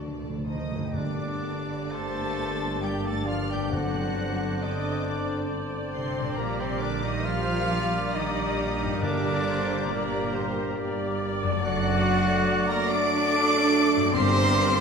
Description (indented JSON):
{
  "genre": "classical, slow romantic movement for symphony orchestra",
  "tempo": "59-73 BPM",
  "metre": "3/4",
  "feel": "rubato",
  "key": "G minor",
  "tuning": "A4 = 440 Hz",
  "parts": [
    { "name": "clear symphonic violin section", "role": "melody", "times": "0.0-14.8 s", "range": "A5 to D7", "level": "-35 LUFS", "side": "left 2 dB", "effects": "none" },
    { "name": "bright clarinet", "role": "second line", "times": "0.0-14.8 s", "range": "D4 to G4", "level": "-37 LUFS", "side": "left 2 dB", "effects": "none" },
    { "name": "warm symphonic violin section", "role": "second line", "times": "0.0-14.8 s", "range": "Bb4 to D6", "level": "-37 LUFS", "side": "left 2 dB", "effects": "none" },
    { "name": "clear symphonic viola section", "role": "accompaniment", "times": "0.0-14.8 s", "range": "A3 to Eb5", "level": "-33 LUFS", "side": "left 1 dB", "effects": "none" },
    { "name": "mellow French horn section", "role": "sustained chords", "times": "0.0-14.8 s", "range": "A3 to A4", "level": "-34 LUFS", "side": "left 5 dB", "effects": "none" },
    { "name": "concert harp", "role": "arpeggios", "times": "0.0-14.8 s", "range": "F#2 to D5", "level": "-37 LUFS", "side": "left 9 dB", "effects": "none" },
    { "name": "rich studio cello section", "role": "bass", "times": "0.0-14.8 s", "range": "Bb2 to D4", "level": "-31 LUFS", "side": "right 3 dB", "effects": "none" },
    { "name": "rich symphonic double bass section", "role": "bass", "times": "0.0-14.8 s", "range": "F#1 to D2", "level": "-32 LUFS", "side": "right 3 dB", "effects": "none" },
    { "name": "timpani", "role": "percussion", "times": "0.0-14.8 s", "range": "G2 to D3", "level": "-35 LUFS", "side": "equal", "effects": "none" },
    { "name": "silver concert flute", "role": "second line", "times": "0.5-14.8 s", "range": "Bb4 to D6", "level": "-36 LUFS", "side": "left 2 dB", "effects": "none" },
    { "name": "bright trumpet", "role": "stabs", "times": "0.5-14.8 s", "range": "Bb3 to D5", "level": "-32 LUFS", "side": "right 1 dB", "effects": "none" },
    { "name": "warm cor anglais", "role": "second line", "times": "0.9-14.8 s", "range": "Bb4 to D5", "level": "-38 LUFS", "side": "right 2 dB", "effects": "none" },
    { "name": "warm trombone section", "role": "sustained chords", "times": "1.0-14.8 s", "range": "D3 to C4", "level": "-34 LUFS", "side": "right 2 dB", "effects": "none" }
  ],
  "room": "wet scoring stage reverb, RT60 1.9 s",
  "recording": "none",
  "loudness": "-24 LUFS",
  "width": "side -6 dB against mid",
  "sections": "0.9-14.8 A section",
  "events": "timpani fill 0.0-0.9",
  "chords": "0.0 D; 0.9 Gm; 3.7 D7/G; 6.4 Gm/Bb; 9.0 Gm; 11.6 D/F#; 14.1 Gm",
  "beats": "| 0.94 1.92 2.83 | 3.73 4.62 5.51 | 6.38 7.25 8.14 | 9.01 9.89 10.76 | 11.62 12.48 13.31 | 14.15"
}